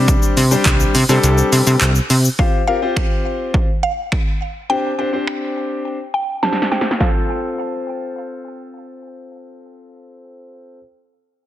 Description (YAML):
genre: dance-pop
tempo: 104 BPM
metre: 4/4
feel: straight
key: F major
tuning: A4 = 440 Hz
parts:
  - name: clear concert grand piano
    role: accompaniment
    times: 0.0-10.8 s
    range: G3 to C5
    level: -22 LUFS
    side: left 2 dB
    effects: sidechain pumping
  - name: plucky analog bass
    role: bass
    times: 0.0-2.3 s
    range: C2 to C3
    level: -14 LUFS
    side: equal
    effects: sidechain pumping
  - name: punchy analog drum machine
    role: drums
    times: 0.1-7.1 s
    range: finger snaps, handclaps, hi-hat, kick drum, shaker, snare drum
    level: -17 LUFS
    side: equal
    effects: overdrive
  - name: mallet-like synth pluck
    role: melody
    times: 2.4-8.7 s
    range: F5 to A5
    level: -23 LUFS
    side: equal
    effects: chorus, phaser, sidechain pumping, digital delay
room: light reverb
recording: dense, heavily limited modern master, low-pass filter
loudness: -15 LUFS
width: side -13 dB against mid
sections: 0.0-2.4 A section; 2.4-7.0 B section; 7.0-9.3 C section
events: kick muted 1.2-2.4; drum fill 6.4-7.0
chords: 0.0 Csus2; 2.4 Fsus2; 4.7 Csus2; 7.0 F